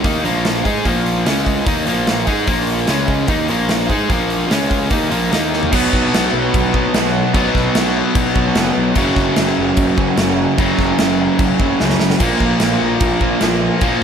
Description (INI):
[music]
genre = hard rock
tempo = 148 BPM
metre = 4/4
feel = straight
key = Bb phrygian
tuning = A4 = 440 Hz
[part]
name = cranked stack guitar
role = riff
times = 0.0-14.0 s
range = Gb2 to Ab4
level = -18 LUFS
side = left 7 dB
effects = overdrive
[part]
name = crunchy overdriven guitar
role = riff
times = 0.0-14.0 s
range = Gb2 to Ab4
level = -21 LUFS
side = right 14 dB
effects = none
[part]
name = fuzz picked electric bass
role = bass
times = 0.0-14.0 s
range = F#1 to Ab2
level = -22 LUFS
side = right 1 dB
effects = overdrive
[part]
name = big rock drum kit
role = drums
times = 0.0-14.0 s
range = crash cymbal, hi-hat, kick drum, snare drum, toms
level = -19 LUFS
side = equal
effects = none
[part]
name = overdriven electric guitar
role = riff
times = 5.7-14.0 s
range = Gb2 to B3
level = -22 LUFS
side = right 2 dB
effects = none
[sound]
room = light reverb, small room ambience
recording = none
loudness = -13 LUFS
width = side -7 dB against mid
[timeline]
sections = 0.0-5.7 A section; 5.7-14.0 B section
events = drum fill 5.5, 11.8-12.2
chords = 0.1 Bb5; 1.3 Db5; 1.7 Bb5; 2.9 Db5; 3.3 Bb5; 4.5 Db5; 4.9 Bb5; 5.3 Eb5; 5.7 B5; 9.0 Gb5; 12.2 Bb5